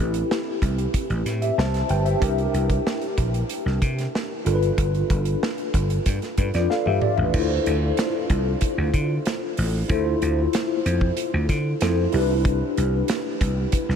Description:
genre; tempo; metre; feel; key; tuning
polished 1980s jazz-funk pop; 94 BPM; 4/4; straight; unclear; A4 = 440 Hz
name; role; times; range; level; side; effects
mellow tine electric piano; accompaniment; 0.0-14.0 s; C4 to A5; -24 LUFS; left 1 dB; medium stereo tremolo, lush chorus
vintage slap bass; bass; 0.0-14.0 s; G1 to D3; -23 LUFS; equal; none
modern studio drum kit; drums; 0.1-14.0 s; crash cymbal, hi-hat, kick drum, snare drum, toms; -26 LUFS; equal; none
room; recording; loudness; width
moderate huge ambient reverb, RT60 7.2 s; dreamy mix soaked in reverb; -20 LUFS; side -7 dB against mid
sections
0.0-7.3 A section; 7.3-14.0 B section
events
drum fill 6.7-7.3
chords
0.0 Am9; 2.2 C7; 4.5 G7; 7.3 Dm9; 12.1 Cmaj9

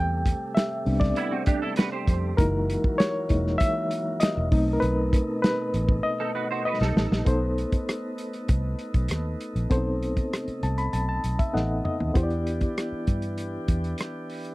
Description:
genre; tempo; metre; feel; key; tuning
lush 1970s-style soul; 98 BPM; 4/4; straight; unclear; A4 = 443 Hz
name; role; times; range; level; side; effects
bright reed electric piano; accompaniment; 0.0-14.5 s; E3 to B5; -28 LUFS; left 1 dB; fast tremolo
tonewheel organ; sustained chords; 0.0-14.5 s; B2 to G4; -35 LUFS; right 1 dB; slow rotary speaker
vintage muted fingered electric bass; bass; 0.0-13.9 s; E1 to G2; -27 LUFS; equal; none
warm soul drum kit; drums; 0.3-14.5 s; hi-hat, kick drum, rim click, snare drum, toms; -24 LUFS; equal; none
semi-hollow electric guitar; riff; 1.2-2.4, 6.2-7.2 s; B3 to C5; -30 LUFS; right 6 dB; ensemble chorus
room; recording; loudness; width
little or no reverb; dry, close 1970s-style studio recording; -23 LUFS; side -20 dB against mid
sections
0.0-7.3 A section; 7.3-12.2 B section; 12.2-14.5 C section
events
reed electric piano solo 0.0-7.3; drum fill 6.0-7.3, 11.5-12.2; reed electric piano fill 10.3-12.2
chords
0.0 Am11; 2.4 F#13; 4.5 B7b9; 12.2 Em7

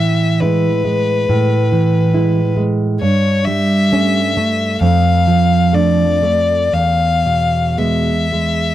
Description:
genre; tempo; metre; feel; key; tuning
romantic duo for violin and classical guitar; 56-71 BPM; 4/4; rubato; unclear; A4 = 440 Hz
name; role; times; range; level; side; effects
clear violin; melody; 0.0-8.7 s; B4 to F5; -17 LUFS; left 4 dB; none
nylon-string guitar; accompaniment; 0.0-8.7 s; E2 to E4; -14 LUFS; right 2 dB; none
room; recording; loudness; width
light reverb; dry, close 1970s-style studio recording; -12 LUFS; side -13 dB against mid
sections
0.0-8.7 A section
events
none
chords
0.0 E/A; 3.0 A7/G; 4.8 Dm/F; 6.7 E

